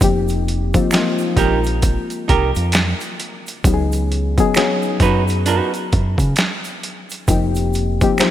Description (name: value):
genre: R&B, neo-soul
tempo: 66 BPM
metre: 4/4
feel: swing 60% on 16ths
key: unclear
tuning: A4 = 440 Hz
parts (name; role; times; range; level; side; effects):
- reed electric piano; accompaniment; 0.0-8.3 s; F3 to Ab4; -20 LUFS; left 4 dB; analog chorus
- deep dub fingered electric bass; bass; 0.0-8.0 s; F1 to Db3; -19 LUFS; equal; none
- boom bap sampler-style drum kit; drums; 0.0-8.3 s; hi-hat, kick drum, snare drum; -19 LUFS; equal; overdrive
- tube shaker and finger snaps; percussion; 0.0-8.3 s; none; -30 LUFS; right 3 dB; none
- archtop guitar, miked and amplified; second line; 0.9-8.2 s; Eb4 to Cb5; -21 LUFS; right 6 dB; none
room: light reverb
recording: bright 1980s-style digital production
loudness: -15 LUFS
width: side -12 dB against mid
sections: 0.0-8.3 A section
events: none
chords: 0.0 F9sus4; 3.6 Db9sus4; 7.3 F9sus4